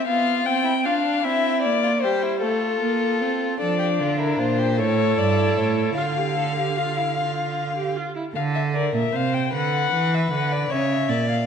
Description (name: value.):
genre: classical, baroque-style fugue for string quartet.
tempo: 51 BPM (dotted quarters).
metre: 6/8.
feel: straight.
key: F major, D minor from 3.6 s.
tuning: A4 = 440 Hz.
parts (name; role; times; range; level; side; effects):
dark violin; melody; 0.0-11.5 s; A4 to G5; -24 LUFS; left 8 dB; none.
rich viola; accompaniment; 0.0-8.2 s; G3 to A4; -26 LUFS; right 4 dB; none.
rich violin; second line; 0.1-11.5 s; D4 to F5; -27 LUFS; left 1 dB; none.
rich cello; bass; 3.6-11.5 s; G2 to F3; -24 LUFS; right 4 dB; none.
room: moderate scoring stage reverb, RT60 1.7 s.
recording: dark, warm production.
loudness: -20 LUFS.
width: side -7 dB against mid.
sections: 0.0-3.6 A section; 3.6-8.4 B section; 8.4-11.5 C section.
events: none.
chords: 0.1 G7/B; 1.2 C7; 2.4 F/A; 3.6 Dm; 4.8 A7; 6.0 Dm; 9.5 E5/D; 10.7 A (rootless).